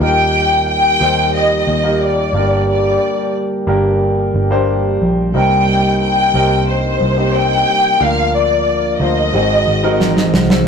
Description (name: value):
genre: piano-driven pop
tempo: 90 BPM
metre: 4/4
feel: straight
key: Eb major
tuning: A4 = 440 Hz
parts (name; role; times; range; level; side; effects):
- rich studio violin section; melody; 0.0-10.3 s; C5 to G5; -15 LUFS; left 1 dB; none
- clear baby grand piano; accompaniment; 0.0-10.7 s; G2 to C5; -19 LUFS; left 1 dB; none
- mellow tonewheel organ; sustained chords; 0.0-10.7 s; C3 to G4; -21 LUFS; equal; slow rotary speaker
- vintage muted picked electric bass; bass; 0.0-10.6 s; G1 to Eb2; -18 LUFS; equal; none
- snare drum; drums; 10.0-10.7 s; none; -12 LUFS; right 2 dB; none
room: wet stone room reverb, RT60 1.1 s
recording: rough rehearsal-room recording, tube saturation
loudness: -12 LUFS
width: side -6 dB against mid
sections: 0.0-10.7 A section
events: drum fill 10.0-10.7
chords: 0.0 Eb; 2.3 Gm; 5.3 Cm7; 8.0 Bb/D; 9.3 Ab7